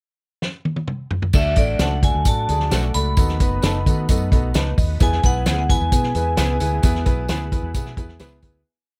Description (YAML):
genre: uptempo 1960s-style soul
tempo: 131 BPM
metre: 4/4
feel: straight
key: unclear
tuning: A4 = 440 Hz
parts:
  - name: warm soul drum kit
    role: drums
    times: 0.4-8.5 s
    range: crash cymbal, hi-hat, kick drum, snare drum, toms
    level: -22 LUFS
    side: equal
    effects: none
  - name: warm upright piano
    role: accompaniment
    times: 1.3-8.6 s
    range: D3 to D#5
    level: -30 LUFS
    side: equal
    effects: none
  - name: tonewheel organ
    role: sustained chords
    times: 1.3-8.6 s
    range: F#3 to G#4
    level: -37 LUFS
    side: equal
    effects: none
  - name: vintage muted fingered electric bass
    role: bass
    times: 1.3-8.6 s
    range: F#1 to D#3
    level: -25 LUFS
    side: equal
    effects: none
  - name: tambourine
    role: percussion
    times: 1.3-8.5 s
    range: none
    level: -37 LUFS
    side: equal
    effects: none
  - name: vibraphone with hard mallets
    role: melody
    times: 1.4-8.2 s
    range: D5 to B5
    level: -28 LUFS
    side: equal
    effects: tape echo
  - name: electric guitar through a small old amp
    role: stabs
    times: 1.8-8.3 s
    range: B3 to A4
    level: -36 LUFS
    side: equal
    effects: none
room: little or no reverb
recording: none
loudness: -20 LUFS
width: mono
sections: 0.0-1.3 pickup bar; 1.3-8.7 pre-chorus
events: drum fill 0.4-1.3; fade-out 6.8-8.7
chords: 0.0 N.C.; 1.3 D; 3.2 B7; 5.0 E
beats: 0.42 0.88 | 1.34 1.80 2.26 2.72 | 3.18 3.63 4.09 4.55 | 5.01 5.47 5.92 6.38 | 6.83 7.29 7.74 8.20